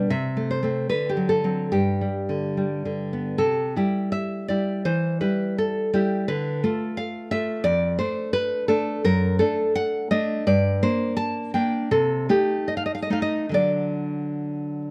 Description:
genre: romantic piece for solo classical guitar.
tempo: 67-90 BPM.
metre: 2/4.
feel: rubato.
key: G major.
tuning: A4 = 440 Hz.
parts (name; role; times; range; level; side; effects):
nylon-string guitar; solo; 0.0-14.9 s; F2 to A5; -24 LUFS; equal; none.
room: light reverb.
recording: close, detailed microphones.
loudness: -24 LUFS.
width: mono.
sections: 0.0-3.4 A section; 3.4-14.9 B section.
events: none.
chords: 0.1 Am/C; 0.9 D7; 1.7 G; 3.4 C; 4.9 Emadd11; 6.3 Dm; 7.7 Dm/F; 9.1 D/F#; 10.5 Gm; 11.9 Adim/C; 13.5 D.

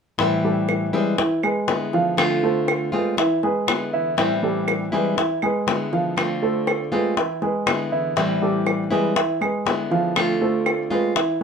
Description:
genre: latin, Cuban son and guajira.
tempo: 120 BPM.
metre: 4/4.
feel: straight.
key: A harmonic minor.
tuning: A4 = 439 Hz.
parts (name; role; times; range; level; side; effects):
nylon-string guitar; accompaniment; 0.2-11.2 s; A2 to F4; -23 LUFS; left 1 dB; none.
dark baby grand piano; arpeggios; 0.2-11.4 s; E3 to F5; -22 LUFS; right 2 dB; none.
bongos; percussion; 0.2-11.4 s; none; -25 LUFS; left 6 dB; none.
claves; percussion; 0.7-10.9 s; none; -27 LUFS; right 5 dB; none.
room: light reverb.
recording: minimal, uncompressed stereo recording.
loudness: -19 LUFS.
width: side -6 dB against mid.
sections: 0.2-11.4 A section.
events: none.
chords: 0.2 Am7; 1.2 E7; 2.2 Dm7; 3.2 E7; 4.2 Am7; 5.2 E7; 6.2 Dm7; 7.2 E7; 8.2 Am7; 9.2 E7; 10.2 Dm7.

